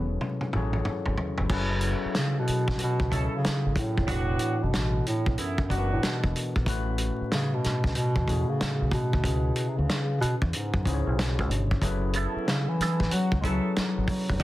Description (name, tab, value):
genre	R&B, neo-soul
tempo	93 BPM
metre	4/4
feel	swing 63% on 16ths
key	F# minor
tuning	A4 = 443 Hz
part	dark bass clarinet	melody	0.0-14.4 s	F#2 to B3	-28 LUFS	equal	none
part	overdriven tine electric piano	accompaniment	0.0-14.4 s	A2 to C#5	-33 LUFS	left 3 dB	wide subtle chorus
part	deep dub fingered electric bass	bass	0.0-14.4 s	E1 to F#2	-29 LUFS	equal	none
part	warm soul drum kit	drums	0.2-14.4 s	crash cymbal, hi-hat, kick drum, snare drum, toms	-29 LUFS	equal	none
part	mellow horn section	stabs	1.8-6.2, 12.1-14.4 s	A3 to A4	-34 LUFS	right 2 dB	slapback echo
part	semi-hollow electric guitar	second line	12.2-13.0 s	B3 to A4	-32 LUFS	right 7 dB	wah
room	moderate studio reverb, RT60 0.7 s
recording	dense, heavily limited modern master, vinyl crackle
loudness	-24 LUFS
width	side -16 dB against mid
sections	0.0-1.5 A section; 1.5-14.4 B section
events	drum fill 0.0-1.5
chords	0.0 F#m11; 4.1 E9sus4; 6.7 A69; 9.2 C#m7; 11.8 F#m11